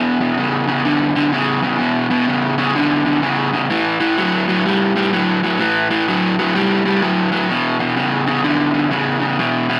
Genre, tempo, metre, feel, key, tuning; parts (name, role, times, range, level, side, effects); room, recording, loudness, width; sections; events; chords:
blues; 126 BPM; 4/4; swing 64% on 8ths; E minor; A4 = 440 Hz
overdriven semi-hollow guitar; solo; 0.0-9.8 s; E2 to G3; -17 LUFS; equal
moderate studio reverb, RT60 0.7 s; vinyl crackle; -17 LUFS; mono
0.0-9.8 A section
0.0 E5; 3.7 A5; 7.5 E5